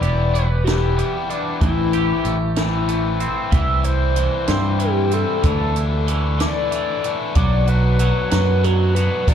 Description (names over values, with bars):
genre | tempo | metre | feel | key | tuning
indie rock | 63 BPM (dotted quarters) | 6/8 | straight | unclear | A4 = 440 Hz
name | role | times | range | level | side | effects
overdriven synth lead | melody | 0.0-9.3 s | D4 to E5 | -23 LUFS | left 2 dB | distortion, chorus, phaser, slapback echo, analog delay
biting overdriven guitar | riff | 0.0-9.3 s | B2 to F#4 | -25 LUFS | left 7 dB | slapback echo
twangy electric guitar | riff | 0.0-9.3 s | E3 to G4 | -28 LUFS | right 8 dB | analog chorus, slapback echo
picked electric bass | bass | 0.0-9.3 s | E1 to G2 | -19 LUFS | right 1 dB | none
compact cocktail drum kit | drums | 0.0-9.3 s | hi-hat, kick drum, snare drum | -21 LUFS | right 1 dB | none
room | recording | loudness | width
small room ambience | live gig heard through the venue's PA, club reverb | -16 LUFS | side -9 dB against mid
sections
0.0-3.5 A section; 3.5-9.3 B section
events
none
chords
0.0 Em7; 1.6 Am7; 3.5 C; 5.5 Dsus2; 7.4 Bm